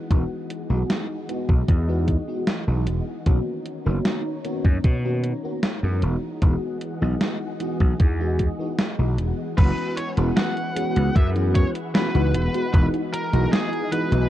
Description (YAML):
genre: vaporwave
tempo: 76 BPM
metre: 4/4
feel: straight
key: E lydian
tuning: A4 = 440 Hz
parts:
  - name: FM electric piano with soft pad layer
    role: accompaniment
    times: 0.0-14.3 s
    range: D#3 to F#4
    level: -27 LUFS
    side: left 1 dB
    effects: tremolo, ensemble chorus, tape echo
  - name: soft string machine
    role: sustained chords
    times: 0.0-14.3 s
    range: E3 to A#5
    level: -33 LUFS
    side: equal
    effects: phaser, ensemble chorus
  - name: gritty slap bass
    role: bass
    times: 0.1-14.2 s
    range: E1 to B2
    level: -22 LUFS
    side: equal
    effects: overdrive, tube saturation
  - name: electronic kick drum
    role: drums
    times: 0.1-12.9 s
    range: none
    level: -18 LUFS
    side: equal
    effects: vintage 12-bit sampler grit
  - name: gated 80s digital drum machine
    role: drums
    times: 0.1-14.3 s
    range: crash cymbal, hi-hat, snare drum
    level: -25 LUFS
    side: equal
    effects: gated reverb, gated reverb snare, vintage 12-bit sampler grit
  - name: high-gain lead guitar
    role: melody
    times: 9.6-14.3 s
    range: G#4 to F#5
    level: -29 LUFS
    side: equal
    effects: distortion, tape echo
room: little or no reverb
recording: dark, warm production, cassette tape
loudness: -20 LUFS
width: side -13 dB against mid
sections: 0.0-9.6 A section; 9.6-14.3 B section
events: filter sweep on string machine 0.0-9.6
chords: 0.0 Emaj9; 3.3 Bmaj9; 6.0 Emaj9; 9.6 F#9sus4; 12.3 Emaj9